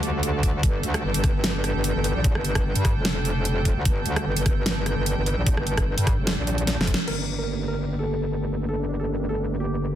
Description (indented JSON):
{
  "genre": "heavy wobble dubstep",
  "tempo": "149 BPM",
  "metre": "4/4",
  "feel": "swing 54% on 16ths, half-time",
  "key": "G minor",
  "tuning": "A4 = 436 Hz",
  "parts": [
    { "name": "lush unison pad", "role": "sustained chords", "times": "0.0-10.0 s", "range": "D3 to G5", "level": "-30 LUFS", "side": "right 1 dB", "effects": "chorus, vintage 12-bit sampler grit, sidechain pumping" },
    { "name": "metallic wobble bass", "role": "bass", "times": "0.0-10.0 s", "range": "F1 to G2", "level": "-25 LUFS", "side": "equal", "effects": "chorus, overdrive" },
    { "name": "dubstep drum kit", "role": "drums", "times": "0.0-7.2 s", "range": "crash cymbal, hi-hat, rim click, snare drum", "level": "-27 LUFS", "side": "equal", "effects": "none" },
    { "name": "electronic kick drum", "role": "drums", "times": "0.4-7.0 s", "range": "none", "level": "-22 LUFS", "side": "equal", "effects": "none" },
    { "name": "dark grand piano", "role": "melody", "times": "7.1-10.0 s", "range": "D4 to Bb4", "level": "-31 LUFS", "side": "equal", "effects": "ping-pong delay" }
  ],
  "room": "light reverb, digital ambience",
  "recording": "dense, heavily limited modern master",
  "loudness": "-22 LUFS",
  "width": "side -11 dB against mid",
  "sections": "0.0-7.1 A section; 7.1-10.0 B section",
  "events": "drop 0.0-7.1; drum fill 6.7-7.1; band accent 6.9; filter sweep on analog synth pad 7.1-10.0",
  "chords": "0.0 G5; 7.1 Gmadd9"
}